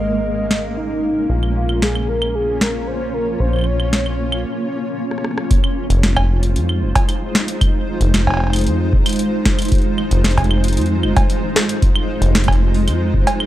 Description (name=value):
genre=IDM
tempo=114 BPM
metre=4/4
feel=straight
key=F minor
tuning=A4 = 440 Hz
part: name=warm velvety synth lead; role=melody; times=0.0-4.5 s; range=Eb4 to Eb5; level=-22 LUFS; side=equal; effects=chorus, tape echo
part: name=granular cloud pad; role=sustained chords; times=0.0-13.5 s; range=Ab3 to Db5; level=-22 LUFS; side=right 1 dB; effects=built-in reverb
part: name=deep acid bass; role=bass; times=0.0-13.2 s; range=F1 to F2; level=-18 LUFS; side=equal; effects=tube saturation
part: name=bubbling stepped-filter texture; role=texture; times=0.0-4.5 s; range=F5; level=-40 LUFS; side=right 6 dB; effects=none
part: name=booming analog drum machine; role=drums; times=0.5-13.5 s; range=claves, cowbell, hi-hat, rim click, snare drum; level=-20 LUFS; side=equal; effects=none
part: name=electronic kick drum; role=drums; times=5.5-13.2 s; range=none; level=-17 LUFS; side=equal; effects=none
room=digital ambience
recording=dry, gritty hardware recording, transformer saturation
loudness=-15 LUFS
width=side -14 dB against mid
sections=0.0-5.5 A section; 5.5-13.5 B section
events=break 4.5-5.5; drum fill 5.1-5.5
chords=0.0 Absus2; 1.3 Bbm; 5.5 Fm7